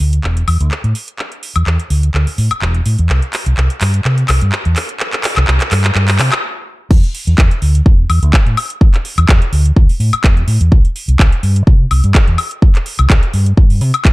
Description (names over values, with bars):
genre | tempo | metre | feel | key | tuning
filtered disco house | 126 BPM | 4/4 | swing 54% on 16ths | E minor | A4 = 439 Hz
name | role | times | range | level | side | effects
fingered electric bass | bass | 0.0-13.9 s | E1 to C3 | -12 LUFS | equal | tube saturation, sidechain pumping, low-pass filter
house drum kit | drums | 0.0-14.1 s | crash cymbal, handclaps, hi-hat, woodblock | -18 LUFS | left 1 dB | sidechain pumping on hats, sidechain pumping on perc, sidechain pumping on cymbals
electronic kick drum | drums | 6.9-14.1 s | none | -9 LUFS | equal | none
room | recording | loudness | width
little or no reverb | dark, warm production | -10 LUFS | side -20 dB against mid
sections
0.0-6.9 A section; 6.9-14.1 B section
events
build-up 0.0-6.9; drum fill 0.0-6.4; filter sweep on fingered electric bass 0.0-6.9; stop 6.4-6.9; drop 6.9-14.1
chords
none